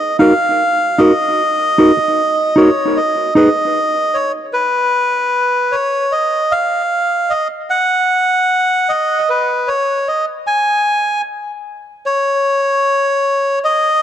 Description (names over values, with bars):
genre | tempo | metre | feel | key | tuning
reggae | 76 BPM | 4/4 | straight | unclear | A4 = 440 Hz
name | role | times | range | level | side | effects
melodica | melody | 0.0-14.0 s | Cb5 to Ab5 | -14 LUFS | equal | tape echo
mellow electric guitar | accompaniment | 0.2-3.5 s | Eb4 to Cb5 | -14 LUFS | equal | tape echo
room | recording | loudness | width
moderate plate reverb, RT60 3.5 s | dark, warm production | -12 LUFS | side -10 dB against mid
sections
0.0-14.0 A section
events
break 3.0-14.0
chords
0.0 Ebm; 3.0 Abm; 6.1 N.C.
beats
0.59 1.38 2.17 | 2.96 3.75 4.54 5.33 | 6.12 6.91 7.70 8.49 | 9.28 10.07 10.86 11.65 | 12.44 13.23 14.02